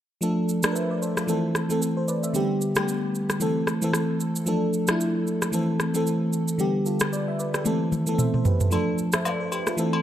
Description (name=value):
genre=afrobeats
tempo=113 BPM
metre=4/4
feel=swing 58% on 16ths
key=unclear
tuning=A4 = 441 Hz
part: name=FM electric piano with soft pad layer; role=accompaniment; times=0.2-10.0 s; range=D3 to E5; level=-23 LUFS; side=equal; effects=chorus
part: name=afro-pop drum kit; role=drums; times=0.2-9.9 s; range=rim click, shaker, toms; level=-27 LUFS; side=equal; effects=none
part: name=agogo bells and woodblock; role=percussion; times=8.7-10.0 s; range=none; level=-30 LUFS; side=left 5 dB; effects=none
room=moderate echo chamber reverb, RT60 2.0 s, digital ambience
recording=dark, warm production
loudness=-22 LUFS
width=side -11 dB against mid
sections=0.2-10.0 A section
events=kick muted 0.2-8.7; drum fill 7.7-8.7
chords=0.2 Dm; 1.3 Am; 2.3 G; 3.4 Am; 4.5 Dm; 5.5 Am; 6.6 G; 7.7 Am; 8.7 Dm